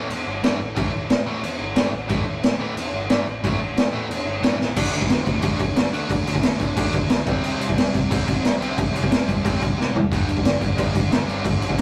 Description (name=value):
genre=punk rock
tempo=180 BPM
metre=4/4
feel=straight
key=unclear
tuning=A4 = 442 Hz
part: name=distorted electric guitar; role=riff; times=0.0-11.8 s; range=G2 to D4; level=-32 LUFS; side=equal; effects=overdrive
part: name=fuzz guitar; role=riff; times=0.0-11.8 s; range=G2 to D4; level=-35 LUFS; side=equal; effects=none
part: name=sludgy distorted guitar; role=riff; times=0.0-11.8 s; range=G2 to D4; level=-33 LUFS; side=equal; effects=none
part: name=picked electric bass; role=bass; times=0.0-11.8 s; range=G1 to D3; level=-35 LUFS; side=equal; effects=none
part: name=raw garage drum kit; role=drums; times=0.1-11.8 s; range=crash cymbal, kick drum, snare drum, toms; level=-23 LUFS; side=equal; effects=none
room=light reverb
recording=rough rehearsal-room recording, tube saturation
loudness=-22 LUFS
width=mono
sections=0.0-4.8 A section; 4.8-11.8 B section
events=drum fill 4.6, 9.8-10.1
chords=0.0 A5; 4.8 D5; 7.3 C5; 10.1 G5